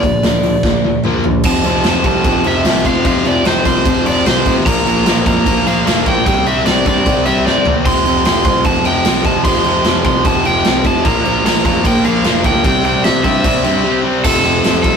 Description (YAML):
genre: punk rock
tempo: 150 BPM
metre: 4/4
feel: straight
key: F major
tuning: A4 = 435 Hz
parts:
  - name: crunchy overdriven guitar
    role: melody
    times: 0.0-15.0 s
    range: A4 to C6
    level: -17 LUFS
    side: right 2 dB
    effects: none
  - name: distorted electric guitar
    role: riff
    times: 0.0-15.0 s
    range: F2 to C4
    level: -17 LUFS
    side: left 5 dB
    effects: overdrive
  - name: distorted electric guitar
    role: riff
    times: 0.0-15.0 s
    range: F2 to C4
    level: -20 LUFS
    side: right 4 dB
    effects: distortion
  - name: growling picked electric bass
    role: bass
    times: 0.0-15.0 s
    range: F1 to G2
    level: -23 LUFS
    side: right 1 dB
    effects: overdrive
  - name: big rock drum kit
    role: drums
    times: 0.0-14.9 s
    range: crash cymbal, hi-hat, kick drum, snare drum, toms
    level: -16 LUFS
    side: equal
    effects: none
  - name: distorted electric guitar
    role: riff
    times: 1.4-15.0 s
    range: F2 to C4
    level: -24 LUFS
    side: right 1 dB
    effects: none
room: light reverb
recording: rough rehearsal-room recording, warm saturation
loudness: -11 LUFS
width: side -6 dB against mid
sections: 0.0-1.4 A section; 1.4-14.2 B section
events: drum fill 0.6-1.4, 7.5-7.9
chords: 0.0 Bb/D; 1.4 F; 4.7 Bb5; 6.3 C5; 7.9 F5; 11.1 Bb5; 12.6 C; 14.2 F